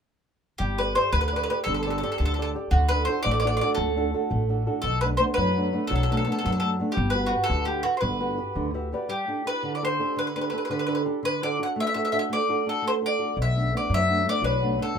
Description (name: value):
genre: italian folk, Italian serenade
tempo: 113 BPM (dotted quarters)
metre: 6/8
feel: straight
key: G major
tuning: A4 = 440 Hz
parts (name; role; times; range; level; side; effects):
- bowl-back mandolin; melody; 0.6-15.0 s; F#4 to F#5; -26 LUFS; left 1 dB; none
- flamenco guitar; accompaniment; 0.6-15.0 s; B2 to E5; -28 LUFS; right 2 dB; none
- upright bass; bass; 0.6-8.9, 13.4-15.0 s; G1 to F#2; -26 LUFS; equal; none
room: moderate small room reverb, RT60 0.6 s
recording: minimal, uncompressed stereo recording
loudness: -23 LUFS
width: side -7 dB against mid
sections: 0.6-9.1 A section; 9.1-15.0 A section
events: nylon-string guitar fill 8.6-9.1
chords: 0.6 Gsus2; 2.7 D; 4.8 Bm7; 7.0 Gmaj7; 9.1 Gsus2; 11.2 D; 13.4 Bm7